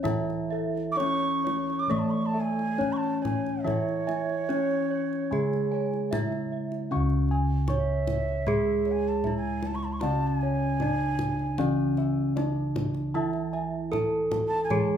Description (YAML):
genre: Javanese gamelan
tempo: 63-77 BPM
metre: 4/4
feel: straight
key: C# pelog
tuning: A4 = 440 Hz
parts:
  - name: gamelan-type bronze metallophone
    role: melody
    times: 0.0-15.0 s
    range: A3 to C#5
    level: -29 LUFS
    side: equal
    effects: none
  - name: gamelan-type bronze metallophone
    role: accompaniment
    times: 0.0-15.0 s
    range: C#3 to A3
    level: -31 LUFS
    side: right 2 dB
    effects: none
  - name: gamelan-type bossed gongs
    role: arpeggios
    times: 0.0-15.0 s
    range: A4 to C#6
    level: -37 LUFS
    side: left 3 dB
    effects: none
  - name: gamelan-type bronze metallophone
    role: arpeggios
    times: 0.0-6.9, 13.2-15.0 s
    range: A4 to A5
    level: -37 LUFS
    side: right 4 dB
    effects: none
  - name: gamelan-type bossed gongs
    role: bass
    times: 0.0-15.0 s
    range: C#2 to E4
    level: -34 LUFS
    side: equal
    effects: none
  - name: kendang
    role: percussion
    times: 0.1-14.9 s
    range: none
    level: -35 LUFS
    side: left 2 dB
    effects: none
  - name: bansuri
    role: second line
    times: 0.9-15.0 s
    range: C#5 to D6+34c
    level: -31 LUFS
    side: right 3 dB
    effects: none
room: light reverb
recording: band playing live in one room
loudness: -25 LUFS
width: side -9 dB against mid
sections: 0.0-6.9 A section; 6.9-15.0 B section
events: none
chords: none